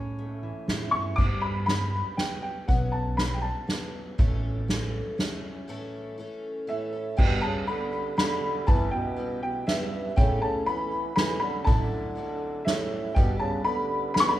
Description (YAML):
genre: indie folk with a building arrangement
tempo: 120 BPM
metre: 3/4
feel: straight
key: unclear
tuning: A4 = 441 Hz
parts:
  - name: dark upright piano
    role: melody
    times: 0.0-3.9, 6.7-14.4 s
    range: E5 to D6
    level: -29 LUFS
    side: left 1 dB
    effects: slapback echo
  - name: fingerpicked steel-string acoustic guitar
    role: accompaniment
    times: 0.0-1.2 s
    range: A2 to E4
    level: -36 LUFS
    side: right 2 dB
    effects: none
  - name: upright bass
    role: bass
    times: 0.0-13.4 s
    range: G1 to A2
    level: -30 LUFS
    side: right 1 dB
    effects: none
  - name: soft-mallet drum kit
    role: drums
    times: 0.2-14.3 s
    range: crash cymbal, kick drum, ride cymbal, snare drum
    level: -28 LUFS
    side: equal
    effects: none
  - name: picked twelve-string acoustic guitar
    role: accompaniment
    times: 1.2-14.4 s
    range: G2 to A4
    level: -36 LUFS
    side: left 2 dB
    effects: none
  - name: mellow trombone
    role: second line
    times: 6.7-14.4 s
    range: G2 to E3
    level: -32 LUFS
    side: right 3 dB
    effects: none
  - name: warm upright piano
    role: accompaniment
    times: 7.2-14.4 s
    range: G1 to G5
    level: -41 LUFS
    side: left 3 dB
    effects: none
  - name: mellow tonewheel organ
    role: sustained chords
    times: 13.2-14.4 s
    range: G4 to B5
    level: -43 LUFS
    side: right 1 dB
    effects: none
room: light reverb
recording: rough home demo mix, studio ambience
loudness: -24 LUFS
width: side -14 dB against mid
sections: 0.0-1.2 A section; 1.2-7.2 B section; 7.2-14.4 C section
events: break 5.7-7.2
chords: 0.0 A; 1.2 G; 2.7 Bsus2; 4.2 A; 7.2 G; 8.7 Em/G; 10.2 A; 11.7 Dadd9/A; 13.2 G